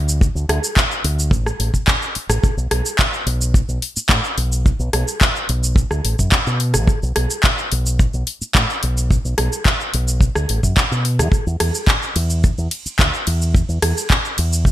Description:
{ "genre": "nu-disco, nu disco", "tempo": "108 BPM", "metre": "4/4", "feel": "straight", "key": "unclear", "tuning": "A4 = 440 Hz", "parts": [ { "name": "fingered electric bass with an envelope filter", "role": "bass", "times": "0.0-14.7 s", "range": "A1 to B2", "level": "-19 LUFS", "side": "equal", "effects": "none" }, { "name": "house drum kit", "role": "drums", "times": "0.1-14.7 s", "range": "handclaps, hi-hat, ride cymbal, rim click, shaker", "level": "-20 LUFS", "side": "equal", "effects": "overdrive, gated reverb" }, { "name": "kick drum", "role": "drums", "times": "0.2-14.7 s", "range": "none", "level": "-16 LUFS", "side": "equal", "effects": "none" } ], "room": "small room ambience", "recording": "bright 1980s-style digital production", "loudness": "-16 LUFS", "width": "side -13 dB against mid", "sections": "0.0-14.7 A section", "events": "none", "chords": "none" }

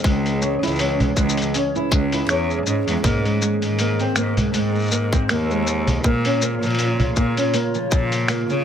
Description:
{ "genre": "folktronica", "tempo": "80 BPM", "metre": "4/4", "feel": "swing 56% on 16ths", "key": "Ab major", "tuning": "A4 = 443 Hz", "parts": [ { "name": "warbly tape-like pad", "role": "sustained chords", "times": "0.0-8.6 s", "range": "Db3 to Db5", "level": "-27 LUFS", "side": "right 3 dB", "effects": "chorus, built-in reverb" }, { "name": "nylon-string guitar", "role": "arpeggios", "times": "0.0-8.6 s", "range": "F3 to Db5", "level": "-23 LUFS", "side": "equal", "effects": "tape echo" }, { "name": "clear cello", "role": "bass", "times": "0.0-8.6 s", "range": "Db2 to Db3", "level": "-23 LUFS", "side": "equal", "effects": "tube saturation" }, { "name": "electronic kick drum", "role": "drums", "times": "0.0-8.1 s", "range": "none", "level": "-19 LUFS", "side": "equal", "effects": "overdrive" }, { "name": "lo-fi sampler-style drum kit", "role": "drums", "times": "0.0-8.6 s", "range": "congas, finger snaps, hi-hat, shaker", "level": "-25 LUFS", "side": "equal", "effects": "none" } ], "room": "light reverb", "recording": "none", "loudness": "-18 LUFS", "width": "side -9 dB against mid", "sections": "0.0-8.6 A section", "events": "none", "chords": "0.0 Dbm; 3.0 Abadd9; 6.0 Bbm" }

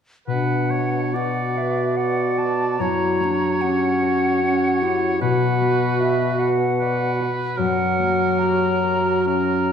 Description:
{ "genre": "classical, slow romantic movement for symphony orchestra", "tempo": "62-78 BPM", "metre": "3/4", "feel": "rubato", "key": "B minor", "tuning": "A4 = 439 Hz", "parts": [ { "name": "bright oboe", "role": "second line", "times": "0.3-9.7 s", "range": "A#4 to D5", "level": "-26 LUFS", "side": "right 4 dB", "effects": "none" }, { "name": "silver concert flute", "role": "second line", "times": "0.3-9.7 s", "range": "E5 to A#5", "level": "-26 LUFS", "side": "left 3 dB", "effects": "none" }, { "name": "warm clarinet", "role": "second line", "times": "0.3-9.7 s", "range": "C#4 to F#4", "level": "-26 LUFS", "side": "right 2 dB", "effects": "none" }, { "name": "mellow bassoon", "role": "accompaniment", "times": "0.3-9.7 s", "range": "B2 to F#3", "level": "-23 LUFS", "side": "right 3 dB", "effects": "none" }, { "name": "concert harp", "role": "arpeggios", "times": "0.3-9.7 s", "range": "F#2 to E5", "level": "-25 LUFS", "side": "left 7 dB", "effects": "none" } ], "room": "wet recital hall reverb, RT60 1.6 s", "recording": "dark, warm production", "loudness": "-18 LUFS", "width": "side -7 dB against mid", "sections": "0.3-9.7 A section", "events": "none", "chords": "0.3 Bm; 2.8 F#7b9; 5.2 Bm; 7.6 F#7b9" }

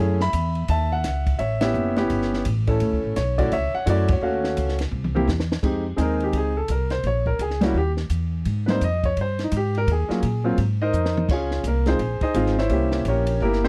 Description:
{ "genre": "jazz piano trio", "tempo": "170 BPM", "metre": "4/4", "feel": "swing 63% on 8ths", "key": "F minor from 5.6 s", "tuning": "A4 = 440 Hz", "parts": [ { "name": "warm baby grand piano", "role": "melody", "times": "0.0-13.7 s", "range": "Gb3 to B5", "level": "-25 LUFS", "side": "equal", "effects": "none" }, { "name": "upright bass", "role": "bass", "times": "0.0-13.7 s", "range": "F#1 to Bb2", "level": "-26 LUFS", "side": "equal", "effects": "none" }, { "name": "compact cocktail drum kit", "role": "drums", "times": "0.2-13.7 s", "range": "crash cymbal, hi-hat, kick drum, ride cymbal, snare drum, toms", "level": "-30 LUFS", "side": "equal", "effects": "none" } ], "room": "little or no reverb", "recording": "dry, close 1970s-style studio recording", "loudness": "-23 LUFS", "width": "mono", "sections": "0.0-5.6 A section; 5.6-13.7 B section", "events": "band accent 1.6, 4.0; drum fill 4.9-5.6, 10.9-11.3; grand piano solo 5.6-13.7", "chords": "0.0 F#m7; 1.4 A9; 2.8 Dmaj9; 4.2 D#m7b5; 4.9 C; 5.6 Fm7; 7.0 Bbm; 7.8 N.C.; 8.5 Abmaj7; 9.9 Ebm; 10.6 Ab69; 11.3 Dbmaj9; 12.7 C7b9" }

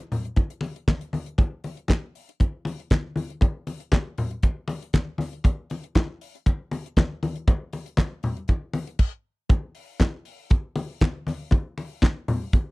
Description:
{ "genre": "disco", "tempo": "118 BPM", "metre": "4/4", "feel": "straight", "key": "none", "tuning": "none", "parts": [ { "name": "damped 70s drum kit", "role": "drums", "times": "0.0-12.7 s", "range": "crash cymbal, handclaps, hi-hat, kick drum, snare drum", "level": "-19 LUFS", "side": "equal", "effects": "none" }, { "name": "congas", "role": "percussion", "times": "0.1-12.7 s", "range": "none", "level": "-28 LUFS", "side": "left 2 dB", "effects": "none" } ], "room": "little or no reverb", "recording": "dry, close 1970s-style studio recording", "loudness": "-23 LUFS", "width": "side -23 dB against mid", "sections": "0.0-1.4 A section; 1.4-9.5 B section; 9.5-12.7 C section", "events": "none", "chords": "none" }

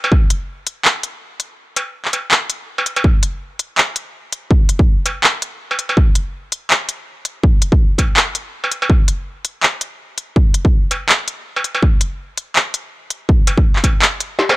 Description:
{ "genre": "drum and bass", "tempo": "164 BPM", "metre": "4/4", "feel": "swing 56% on 16ths, half-time", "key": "none", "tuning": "none", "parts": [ { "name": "industrial drum kit", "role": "drums", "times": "0.0-14.6 s", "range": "handclaps, hi-hat, snare drum, struck metal", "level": "-15 LUFS", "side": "equal", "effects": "none" }, { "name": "electronic kick drum", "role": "drums", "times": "0.1-0.2, 3.0-13.9 s", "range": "none", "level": "-13 LUFS", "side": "equal", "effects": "none" } ], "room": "digital ambience", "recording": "dry, gritty hardware recording", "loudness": "-14 LUFS", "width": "side -18 dB against mid", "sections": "0.0-14.6 A section", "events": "kick drops out 1.6-3.0; drum fill 14.4", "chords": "none" }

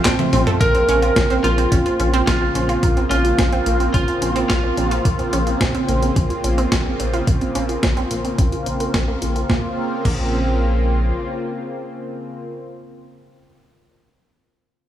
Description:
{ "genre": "synthwave", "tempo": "108 BPM", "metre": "4/4", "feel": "straight", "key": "Bb minor", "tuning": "A4 = 440 Hz", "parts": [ { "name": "warm analog pad", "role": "sustained chords", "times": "0.0-12.5 s", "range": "C3 to F4", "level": "-24 LUFS", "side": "equal", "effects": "chorus, sidechain pumping" }, { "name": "lightly driven lead guitar", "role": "melody", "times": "0.1-4.9 s", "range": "C4 to Bb4", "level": "-20 LUFS", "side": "right 1 dB", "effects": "digital delay" }, { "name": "analog pluck", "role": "arpeggios", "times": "0.1-10.2 s", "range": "A3 to Bb4", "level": "-26 LUFS", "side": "right 3 dB", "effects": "chorus, digital delay" }, { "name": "electric guitar at the edge of break-up", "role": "riff", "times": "0.1-0.5 s", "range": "F3 to C4", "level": "-30 LUFS", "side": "right 4 dB", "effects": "none" }, { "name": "chorused synth bass", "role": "bass", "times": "0.1-11.1 s", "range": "Bb1 to Bb2", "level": "-21 LUFS", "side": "equal", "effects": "none" }, { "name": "clean 12-bit digital drum machine", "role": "drums", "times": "0.1-10.2 s", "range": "crash cymbal, handclaps, hi-hat, snare drum, toms", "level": "-24 LUFS", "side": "equal", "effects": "none" }, { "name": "electronic kick drum", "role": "drums", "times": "0.1-10.2 s", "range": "none", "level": "-20 LUFS", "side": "equal", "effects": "none" } ], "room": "light reverb", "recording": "small room ambience", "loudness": "-16 LUFS", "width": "side -11 dB against mid", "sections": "0.6-9.5 A section; 9.5-11.7 B section", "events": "drum fill 0.2-0.6; filter sweep on analog synth bass 0.6-9.5; filter sweep on synth arpeggio sound 0.6-9.5", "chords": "0.0 F/Bb; 0.6 Bbmadd9" }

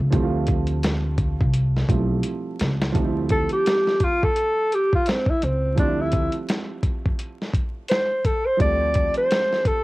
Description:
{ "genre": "hip hop, jazz-hop", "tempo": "85 BPM", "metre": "4/4", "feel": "swing 58% on 16ths", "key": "D minor", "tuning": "A4 = 440 Hz", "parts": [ { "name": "dark baby grand piano", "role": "accompaniment", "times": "0.0-9.8 s", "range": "F3 to G4", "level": "-28 LUFS", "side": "right 4 dB", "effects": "none" }, { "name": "upright bass", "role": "bass", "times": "0.0-9.1 s", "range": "B1 to D2", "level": "-24 LUFS", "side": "equal", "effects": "none" }, { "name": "dusty soul sampler-style drum kit", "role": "drums", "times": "0.1-9.8 s", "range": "hi-hat, kick drum, snare drum", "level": "-24 LUFS", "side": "equal", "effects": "cassette tape" }, { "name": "breathy alto saxophone", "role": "melody", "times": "3.3-9.8 s", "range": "C4 to D5", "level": "-21 LUFS", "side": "equal", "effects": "none" } ], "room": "studio reverb", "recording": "home recording on cassette, vinyl crackle", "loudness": "-19 LUFS", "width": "side -19 dB against mid", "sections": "0.0-3.0 A section; 3.0-9.8 B section", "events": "drum fill 2.2-3.0; alto saxophone solo 3.0-9.8", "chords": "0.0 Dm11" }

